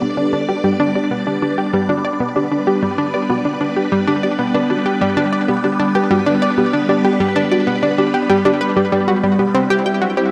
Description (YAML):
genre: ambient, sequencer-driven space music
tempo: 96 BPM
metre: 4/4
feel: straight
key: G major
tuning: A4 = 441 Hz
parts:
  - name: phased string machine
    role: sustained chords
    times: 0.0-10.3 s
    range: G3 to D5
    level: -21 LUFS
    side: equal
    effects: ensemble chorus, phaser
  - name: soft round pluck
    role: arpeggios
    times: 0.0-10.2 s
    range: F#4 to D5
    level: -24 LUFS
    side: equal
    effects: chorus, delay
  - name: analog pluck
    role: riff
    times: 0.0-10.3 s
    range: G3 to G5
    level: -19 LUFS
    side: equal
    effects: chorus, delay
  - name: analog drone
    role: bass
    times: 10.1-10.3 s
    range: C2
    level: -56 LUFS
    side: equal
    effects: none
room: moderate plate reverb, RT60 2.8 s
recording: none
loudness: -17 LUFS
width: mono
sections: 0.0-10.3 A section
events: filter sweep on synth arpeggio sound 0.0-10.3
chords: 0.0 G; 9.5 C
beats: 0.17 0.80 1.42 | 2.05 2.67 3.30 3.92 | 4.55 5.17 5.80 6.42 | 7.05 7.67 8.30 8.92 | 9.55 10.17